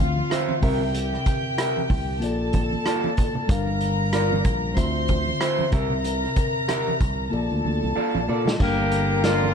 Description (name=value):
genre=lush 1970s-style soul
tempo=94 BPM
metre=4/4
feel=swing 58% on 16ths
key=G dorian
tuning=A4 = 440 Hz
part: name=rich studio violin section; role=second line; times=0.0-9.5 s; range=F4 to C6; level=-28 LUFS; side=left 2 dB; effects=none
part: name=mellow tine electric piano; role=accompaniment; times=0.0-9.5 s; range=C3 to F5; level=-28 LUFS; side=left 1 dB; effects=none
part: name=modern bright fingered electric bass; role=bass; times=0.0-9.5 s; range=G1 to Bb2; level=-27 LUFS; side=equal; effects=none
part: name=congas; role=percussion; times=0.2-9.5 s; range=none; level=-33 LUFS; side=right 7 dB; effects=none
part: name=electric guitar through a small old amp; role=riff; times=0.3-9.5 s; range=F4 to E5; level=-27 LUFS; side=right 3 dB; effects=none
part: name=vintage drum kit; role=drums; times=0.3-9.4 s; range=hi-hat, kick drum, rim click, snare drum, splash cymbal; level=-26 LUFS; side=equal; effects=none
part: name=clear horn section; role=stabs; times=8.6-9.5 s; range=D3 to G4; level=-23 LUFS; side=equal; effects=tape echo
room=light reverb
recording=dark, warm production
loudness=-20 LUFS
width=side -7 dB against mid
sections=0.0-9.5 A section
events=drum fill 7.3-8.6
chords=0.0 Dm9; 0.6 C7; 2.2 Bbmaj7; 3.5 Gm7; 4.8 Dm9; 5.7 C7; 7.3 Bbmaj7; 8.6 Gm7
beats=0.31 | 0.95 1.58 2.22 2.86 | 3.50 4.14 4.78 5.41 | 6.05 6.69 7.33 7.97 | 8.60 9.24